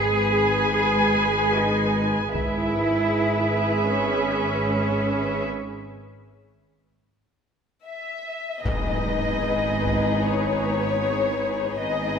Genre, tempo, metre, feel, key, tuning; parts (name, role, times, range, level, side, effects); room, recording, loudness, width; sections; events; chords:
cinematic, suspense film score; 76 BPM; 4/4; straight; G# minor; A4 = 441 Hz
muted studio violin section; second line; 0.0-12.2 s; G#4 to G#5; -26 LUFS; equal
muted studio viola section; accompaniment; 0.0-12.2 s; G#3 to G#4; -27 LUFS; right 1 dB
muted studio cello section; bass; 0.0-12.2 s; G#2 to G#4; -26 LUFS; right 1 dB
muted studio double bass section; bass; 0.0-12.2 s; G#1; -29 LUFS; right 2 dB
muted studio violin section; texture; 0.0-1.9 s; B6 to B#6; -32 LUFS; left 6 dB
taiko ensemble; drums; 2.3-3.9, 8.7-10.2 s; -32 LUFS; left 2 dB
muted studio violin section; melody; 7.9-12.2 s; C#5 to E5; -26 LUFS; left 4 dB
impact; sound effects; 8.7-11.8 s; -32 LUFS; left 1 dB
wet scoring stage reverb, RT60 1.8 s; -20 LUFS; side -6 dB against mid
0.0-8.7 A section; 8.7-12.2 B section
break 5.5-8.7; impact 8.7-11.8
0.0 G#m; 2.3 E/G#; 8.7 G#m